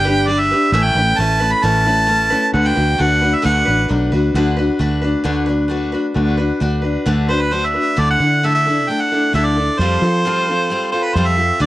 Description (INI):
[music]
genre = folk rock and heartland rock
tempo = 132 BPM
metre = 4/4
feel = straight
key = D mixolydian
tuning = A4 = 440 Hz
[part]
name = clear harmonica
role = melody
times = 0.0-3.9, 7.3-11.7 s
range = B4 to B5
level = -16 LUFS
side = right 1 dB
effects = none
[part]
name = picked steel-string acoustic guitar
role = accompaniment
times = 0.0-11.7 s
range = A2 to B4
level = -18 LUFS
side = left 1 dB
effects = cassette tape
[part]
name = fingered electric bass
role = bass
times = 0.0-11.7 s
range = G1 to F3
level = -19 LUFS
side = equal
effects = none
[sound]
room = light reverb, studio ambience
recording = home recording on cassette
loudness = -14 LUFS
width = side -16 dB against mid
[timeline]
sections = 0.0-4.3 A section; 4.3-8.0 B section; 8.0-11.7 C section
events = none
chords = 0.0 G; 0.7 Aadd9; 2.5 D6; 8.0 Dsus2; 9.8 Fadd9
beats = 0.28 | 0.73 1.18 1.63 2.08 | 2.53 2.99 3.44 3.89 | 4.34 4.80 5.25 5.70 | 6.16 6.61 7.07 7.52 | 7.98 8.43 8.89 9.34 | 9.79 10.25 10.70 11.16 | 11.61